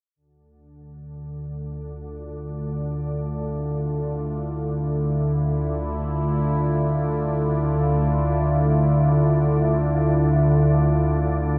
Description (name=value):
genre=dark ambient drone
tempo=free time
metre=none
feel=none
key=D minor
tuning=A4 = 440 Hz
part: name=sweeping resonant pad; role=sustained chords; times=1.6-11.6 s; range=D3 to F4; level=-29 LUFS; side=equal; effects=chorus, phaser
part: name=organ-like drone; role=drone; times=1.0-11.6 s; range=D2 to D3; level=-24 LUFS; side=equal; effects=ensemble chorus, built-in reverb
room=moderate huge ambient reverb, RT60 8.6 s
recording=none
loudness=-22 LUFS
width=mono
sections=0.2-11.6 A section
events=fade-in on analog synth pad 0.2-11.6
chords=0.2 Dm